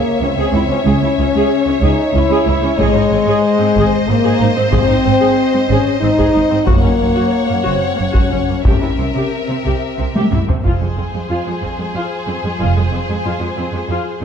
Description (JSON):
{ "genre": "cinematic, epic orchestral film score", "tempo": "92 BPM", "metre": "3/4", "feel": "straight", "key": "F minor from 10.7 s", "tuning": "A4 = 440 Hz", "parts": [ { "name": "clear chamber violin section", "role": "melody", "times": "0.0-14.2 s", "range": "C5 to Gb5", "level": "-27 LUFS", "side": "left 5 dB", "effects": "none" }, { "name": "rich symphonic violin section", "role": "second line", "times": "0.0-14.2 s", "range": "Ab4 to Db5", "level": "-22 LUFS", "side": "left 3 dB", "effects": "none" }, { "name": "warm symphonic viola section", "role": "accompaniment", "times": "0.0-14.1 s", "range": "Ab3 to Ab4", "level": "-22 LUFS", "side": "right 1 dB", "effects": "none" }, { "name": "mellow French horn section", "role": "sustained chords", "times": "0.0-14.2 s", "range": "F3 to Ab4", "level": "-17 LUFS", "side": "left 3 dB", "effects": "none" }, { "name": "rich symphonic cello section", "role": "bass", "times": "0.2-14.2 s", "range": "Db2 to C3", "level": "-22 LUFS", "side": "right 3 dB", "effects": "none" }, { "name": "rich symphonic double bass section", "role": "bass", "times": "0.2-12.8 s", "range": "F1 to Db2", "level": "-20 LUFS", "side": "right 4 dB", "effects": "none" }, { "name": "taiko ensemble", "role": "drums", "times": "2.8-11.9 s", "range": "none", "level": "-18 LUFS", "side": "equal", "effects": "none" } ], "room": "moderate concert hall reverb, RT60 2.0 s", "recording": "dark, warm production", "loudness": "-13 LUFS", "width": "side -7 dB against mid", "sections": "0.0-10.7 A section; 10.7-14.2 B section", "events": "drum fill 10.2-10.7", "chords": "0.0 Dbm; 2.8 Ab; 6.7 Gb; 8.7 C7; 10.7 Fm" }